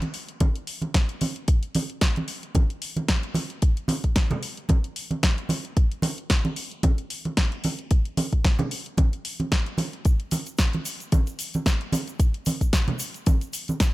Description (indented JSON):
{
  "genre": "nu-disco",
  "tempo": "112 BPM",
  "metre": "4/4",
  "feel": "swing 55% on 16ths",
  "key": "none",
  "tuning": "none",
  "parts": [
    { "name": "house drum kit", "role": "drums", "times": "0.0-13.9 s", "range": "hi-hat, snare drum", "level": "-29 LUFS", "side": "left 1 dB", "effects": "studio reverb" },
    { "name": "congas and tube shaker", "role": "percussion", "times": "0.0-13.9 s", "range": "none", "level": "-27 LUFS", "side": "right 2 dB", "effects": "none" },
    { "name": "electronic kick drum", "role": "drums", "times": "0.4-13.9 s", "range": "none", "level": "-21 LUFS", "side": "equal", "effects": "studio reverb" }
  ],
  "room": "digital ambience",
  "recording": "none",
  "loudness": "-22 LUFS",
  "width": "side -18 dB against mid",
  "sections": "0.0-13.9 A section",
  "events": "none",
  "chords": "none",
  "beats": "0.41 0.94 | 1.48 2.02 2.55 3.09 | 3.62 4.16 4.69 5.23 | 5.76 6.30 6.84 7.37 | 7.91 8.44 8.98 9.52 | 10.05 10.59 11.12 11.66 | 12.19 12.73 13.27 13.80"
}